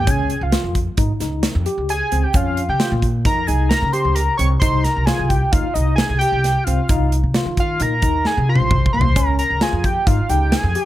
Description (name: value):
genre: progressive instrumental, band music in an uneven meter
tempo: 132 BPM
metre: 5/4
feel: straight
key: Db lydian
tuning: A4 = 440 Hz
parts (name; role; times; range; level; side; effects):
- fat analog lead; melody; 0.0-10.9 s; Eb5 to Db6; -21 LUFS; equal; chorus
- upright bass; bass; 0.0-10.7 s; Ab1 to Eb3; -19 LUFS; equal; none
- tine electric piano; arpeggios; 0.1-10.9 s; Bb3 to G4; -25 LUFS; left 2 dB; medium stereo tremolo
- modern studio drum kit; drums; 0.1-10.9 s; hi-hat, kick drum, snare drum, toms; -20 LUFS; equal; none
- egg shaker; percussion; 0.1-10.5 s; none; -35 LUFS; right 7 dB; none
room: light reverb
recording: none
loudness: -15 LUFS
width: side -14 dB against mid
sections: 0.0-10.9 A section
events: analog synth lead solo 0.0-10.9; drum fill 8.3-9.2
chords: 0.1 Dbmaj9; 4.6 Cmadd11; 6.9 F5/C; 9.2 Dbmaj9#11